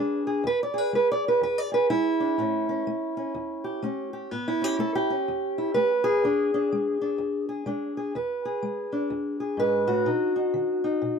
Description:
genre	acoustic country blues, solo or duo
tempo	125 BPM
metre	4/4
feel	swing 62% on 8ths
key	E mixolydian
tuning	A4 = 435 Hz
part	fingerpicked steel-string acoustic guitar	solo	0.0-11.2 s	E2 to D5	-24 LUFS	equal	none
room	small room ambience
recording	dry, close 1970s-style studio recording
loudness	-24 LUFS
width	side -6 dB against mid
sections	0.0-11.2 A section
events	none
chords	0.0 E7; 2.4 A7; 6.2 E7; 10.1 B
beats	| 0.45 0.93 1.41 1.89 | 2.37 2.85 3.33 3.81 | 4.29 4.78 5.26 5.74 | 6.22 6.70 7.18 7.66 | 8.14 8.62 9.10 9.58 | 10.06 10.54 11.02

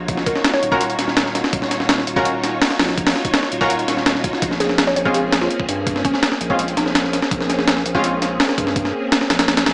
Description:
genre	drum and bass, jungle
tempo	166 BPM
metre	4/4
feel	straight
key	Eb minor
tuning	A4 = 439 Hz
part	soft string machine	sustained chords	0.0-9.7 s	Bb3 to Db5	-23 LUFS	equal	ensemble chorus
part	saturated sub bass	bass	0.0-9.7 s	Eb1 to G2	-27 LUFS	equal	none
part	breakbeat sampler-style drum kit	drums	0.1-9.7 s	hi-hat, kick drum, snare drum	-18 LUFS	equal	small room reverb
part	mallet-like synth pluck	melody	0.3-0.8, 4.6-7.1 s	Db4 to Db5	-24 LUFS	equal	chorus, phaser, dub echo
part	orchestra-hit-like synth stab	stabs	0.7-8.1 s	Ab3 to Bb4	-22 LUFS	equal	built-in reverb, dub echo
room	light reverb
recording	small speaker sound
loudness	-16 LUFS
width	side -31 dB against mid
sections	0.0-9.7 A section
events	none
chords	0.0 Ebm9; 4.4 Bbm9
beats	| 0.08 0.45 0.81 1.17 | 1.53 1.89 2.25 2.61 | 2.98 3.34 3.70 4.06 | 4.42 4.78 5.14 5.50 | 5.87 6.23 6.59 6.95 | 7.31 7.67 8.04 8.40 | 8.76 9.12 9.48

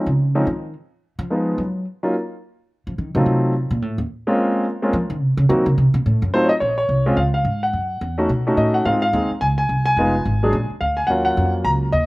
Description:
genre	jazz piano trio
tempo	214 BPM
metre	4/4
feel	swing 60% on 8ths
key	Bb minor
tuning	A4 = 442 Hz
part	clear grand piano	melody	0.0-12.1 s	F3 to Bb5	-19 LUFS	equal	slapback echo
part	upright bass	bass	0.1-12.1 s	F1 to Gb3	-20 LUFS	equal	none
room	little or no reverb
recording	recorded outdoors, with no room sound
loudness	-17 LUFS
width	side -22 dB against mid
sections	0.0-6.6 A section; 6.6-12.1 B section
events	upright bass solo 0.0-6.6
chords	0.0 Dbsus2; 1.0 Fm7b5; 1.6 N.C.; 2.1 Eb7sus2; 3.3 F7b9; 4.4 Bbm9; 5.5 Cm7b5; 6.1 F7b9; 6.6 Bbm9; 7.7 Gb7(no3); 8.3 B9; 8.9 Dbmaj9; 10.0 Fm7b5; 10.5 Bb; 11.1 Ebm9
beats	0.18 0.46 0.74 | 1.02 1.30 1.58 1.86 | 2.14 2.42 2.70 2.98 | 3.26 3.54 3.82 4.10 | 4.38 4.66 4.94 5.22 | 5.50 5.78 6.06 6.33 | 6.62 6.89 7.17 7.46 | 7.74 8.02 8.30 8.58 | 8.86 9.14 9.42 9.70 | 9.98 10.26 10.54 10.82 | 11.10 11.38 11.66 11.94

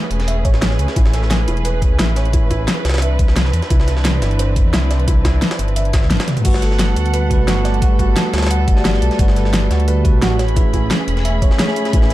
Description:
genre	liquid drum and bass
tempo	175 BPM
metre	4/4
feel	straight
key	G major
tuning	A4 = 439 Hz
part	dark studio string section	sustained chords	0.0-12.1 s	E3 to B5	-25 LUFS	right 2 dB	sidechain pumping
part	felt-muted upright piano	arpeggios	0.0-12.1 s	E4 to F#5	-26 LUFS	right 1 dB	low-pass filter, dub echo
part	dark detuned saw bass	bass	0.1-12.1 s	E1 to E2	-17 LUFS	equal	none
part	jungle sampler-style drum kit	drums	0.1-12.1 s	hi-hat, snare drum	-26 LUFS	equal	high-pass filter on hats, high-pass filter on snare, high-pass filter on room
part	pop drum kit	drums	0.1-12.1 s	crash cymbal, hi-hat, snare drum, toms	-21 LUFS	equal	overdrive
part	electronic kick drum	drums	0.4-12.0 s	none	-15 LUFS	equal	overdrive
part	bell-like tine electric piano	accompaniment	6.4-12.1 s	G3 to G#5	-22 LUFS	moving between left 3 dB and right 6 dB	auto-pan, tape echo
room	digital ambience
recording	dark, warm production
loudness	-13 LUFS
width	side -15 dB against mid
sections	0.0-12.1 A section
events	drum fill 6.2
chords	0.0 Amaj9; 2.8 Cmaj9; 6.4 Gmaj9; 10.4 Amaj9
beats	0.28 0.62 | 0.96 1.31 1.65 1.99 | 2.33 2.68 3.02 3.36 | 3.71 4.05 4.39 4.74 | 5.08 5.42 5.76 6.11 | 6.45 6.79 7.13 7.48 | 7.82 8.16 8.51 8.85 | 9.19 9.54 9.88 10.22 | 10.56 10.91 11.25 11.59 | 11.94

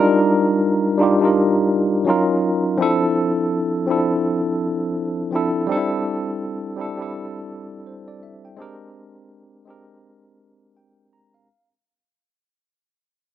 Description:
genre	R&B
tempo	83 BPM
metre	4/4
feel	swing 60% on 16ths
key	unclear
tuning	A4 = 440 Hz
part	bright tine electric piano	solo	0.0-11.7 s	F3 to Bb5	-18 LUFS	equal	medium stereo tremolo
room	light reverb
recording	recorded outdoors, with no room sound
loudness	-17 LUFS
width	side -11 dB against mid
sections	0.0-11.5 A section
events	fade-out 0.0-11.5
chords	0.0 Ebmaj9; 2.1 Ebm9; 2.8 Dm9; 5.7 C69; 8.6 Bb13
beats	0.63 1.35 2.08 | 2.80 3.52 4.24 4.97 | 5.69 6.41 7.13 7.86 | 8.58 9.30 10.03 10.75

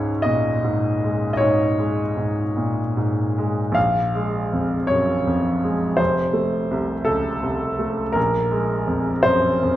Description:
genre	classical, romantic nocturne for solo piano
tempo	50-56 BPM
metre	4/4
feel	rubato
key	Db major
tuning	A4 = 440 Hz
part	clear baby grand piano	solo	0.0-9.8 s	F1 to F5	-19 LUFS	equal	none
room	wet recital hall reverb, RT60 1.6 s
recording	none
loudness	-19 LUFS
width	side -13 dB against mid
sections	0.0-9.8 A section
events	none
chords	0.0 Db5; 3.8 Bbm7; 6.0 F; 8.2 Bb5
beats	0.25 1.41 2.56 | 3.76 4.91 6.00 7.07 | 8.16 9.27

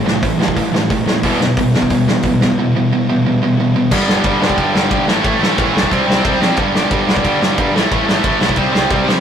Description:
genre	punk rock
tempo	180 BPM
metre	4/4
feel	straight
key	A minor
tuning	A4 = 440 Hz
part	cranked stack guitar	riff	0.0-9.2 s	E2 to C4	-18 LUFS	left 5 dB	overdrive
part	thick fuzz guitar	riff	0.0-3.9 s	A2 to E4	-21 LUFS	left 2 dB	distortion
part	tight distorted guitar	riff	0.0-9.2 s	E2 to C4	-17 LUFS	right 5 dB	distortion
part	fuzz picked electric bass	bass	0.0-9.2 s	E1 to F2	-25 LUFS	equal	overdrive
part	loose indie drum kit	drums	0.1-9.2 s	crash cymbal, hi-hat, kick drum, ride cymbal, snare drum	-17 LUFS	equal	none
room	moderate stone room reverb, RT60 1.3 s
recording	rough rehearsal-room recording, warm saturation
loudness	-12 LUFS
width	side -8 dB against mid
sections	0.0-3.9 A section; 3.9-9.2 B section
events	none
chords	0.0 Am; 1.2 Em; 3.9 G5; 5.1 A5; 5.9 C5; 6.6 G5; 7.7 A5; 8.6 C5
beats	0.23 0.57 0.90 | 1.24 1.57 1.91 2.25 | 2.58 2.92 3.25 3.58 | 3.92 4.25 4.58 4.92 | 5.25 5.58 5.92 6.25 | 6.58 6.91 7.25 7.58 | 7.91 8.24 8.57 8.91

